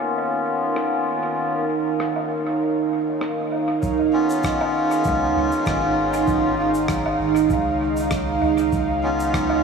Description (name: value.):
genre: ambient dub.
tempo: 98 BPM.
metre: 4/4.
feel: swing 54% on 16ths.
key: Db mixolydian.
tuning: A4 = 439 Hz.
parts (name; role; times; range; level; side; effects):
warm analog pad; sustained chords; 0.0-9.6 s; Eb4 to F5; -21 LUFS; right 4 dB; chorus.
melodica; stabs; 0.0-9.6 s; Cb4 to F4; -24 LUFS; left 2 dB; low-pass filter, dub echo.
rim click, woodblock and shaker; drums; 0.8-9.6 s; none; -32 LUFS; right 1 dB; low-pass filter on snare, low-pass filter on perc, low-pass filter on room, dub echo.
electronic kick drum; drums; 3.8-9.5 s; none; -28 LUFS; equal; none.
soft dub sub bass; bass; 5.1-9.6 s; Ab1 to Db2; -28 LUFS; right 1 dB; none.
room: wet huge ambient reverb, RT60 8.6 s.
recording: dreamy mix soaked in reverb, studio reverb.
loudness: -19 LUFS.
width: side -5 dB against mid.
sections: 0.0-3.8 A section; 3.8-9.6 B section.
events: none.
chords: 0.0 Db7.